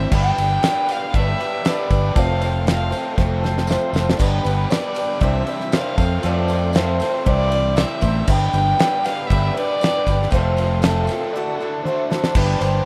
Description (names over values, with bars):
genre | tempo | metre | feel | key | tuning
folk rock and heartland rock | 118 BPM | 4/4 | straight | G mixolydian | A4 = 442 Hz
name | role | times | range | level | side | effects
dark fiddle | melody | 0.0-12.9 s | A4 to G5 | -26 LUFS | equal | digital delay
picked swing-style acoustic guitar | accompaniment | 0.0-12.9 s | C3 to C5 | -29 LUFS | equal | none
bright tonewheel organ | sustained chords | 0.0-12.9 s | A4 to E6 | -38 LUFS | equal | none
biting overdriven guitar | riff | 0.0-12.9 s | C3 to C5 | -30 LUFS | equal | harmonic tremolo
fingered electric bass | bass | 0.0-12.8 s | F1 to F2 | -22 LUFS | equal | none
damped 70s drum kit | drums | 0.1-12.7 s | crash cymbal, kick drum, ride cymbal, snare drum, toms | -25 LUFS | equal | none
tambourine | percussion | 0.1-12.7 s | none | -44 LUFS | equal | none
room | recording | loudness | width
light reverb | rough home demo mix | -19 LUFS | mono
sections
0.0-12.3 A section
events
drum fill 3.2-4.2, 11.8-12.3; break 11.3-12.3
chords
0.1 G; 2.2 F; 4.2 G; 5.2 Cadd9; 6.0 F; 7.3 Cadd9; 8.3 G; 10.3 F; 11.3 Dadd9; 12.3 G